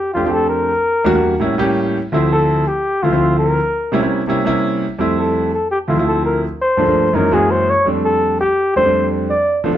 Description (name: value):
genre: jazz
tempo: 167 BPM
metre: 4/4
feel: straight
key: F major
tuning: A4 = 439 Hz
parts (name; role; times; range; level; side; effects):
- breathy flugelhorn; melody; 0.0-9.6 s; F4 to D5; -16 LUFS; left 1 dB; plate reverb
- clear concert grand piano; accompaniment; 0.1-9.8 s; D2 to G4; -16 LUFS; right 1 dB; none
room: moderate studio reverb, RT60 0.8 s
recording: none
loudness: -14 LUFS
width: side -11 dB against mid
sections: 0.0-9.8 A section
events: none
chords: 0.0 F69; 0.7 Em7b5; 1.4 A7b9; 2.1 Dm7; 3.6 C7b9; 5.0 Fmaj7; 5.7 Dm7; 6.4 Gm9; 7.1 Gb13; 7.9 F69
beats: 0.33 | 0.69 1.05 1.41 1.77 | 2.13 2.48 2.84 3.20 | 3.56 3.92 4.28 4.64 | 5.00 5.35 5.71 6.07 | 6.43 6.79 7.15 7.50 | 7.86 8.22 8.58 8.94 | 9.30 9.66